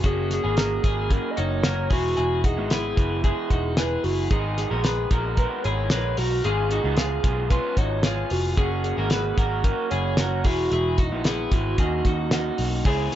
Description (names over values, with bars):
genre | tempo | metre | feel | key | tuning
jangly indie pop | 112 BPM | 4/4 | straight | unclear | A4 = 439 Hz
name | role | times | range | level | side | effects
warbly nostalgic lead | melody | 0.0-13.2 s | F#4 to D#5 | -28 LUFS | equal | chorus
electric guitar through a small old amp | accompaniment | 0.0-13.2 s | F#2 to A#4 | -30 LUFS | right 4 dB | none
twelve-string electric guitar | arpeggios | 0.0-13.2 s | B3 to B4 | -30 LUFS | left 2 dB | none
picked electric bass | bass | 0.0-13.1 s | E1 to D#2 | -27 LUFS | equal | none
cloth-damped thuddy drum kit | drums | 0.0-13.2 s | crash cymbal, hi-hat, kick drum, snare drum | -24 LUFS | equal | none
room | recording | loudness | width
light reverb | nothing above 7.7 kHz | -21 LUFS | side -12 dB against mid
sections
0.0-12.9 A section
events
none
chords
0.0 F#; 1.9 E; 4.3 G#madd9; 6.4 C#7/G#; 8.6 F#; 10.4 E; 11.8 D#m7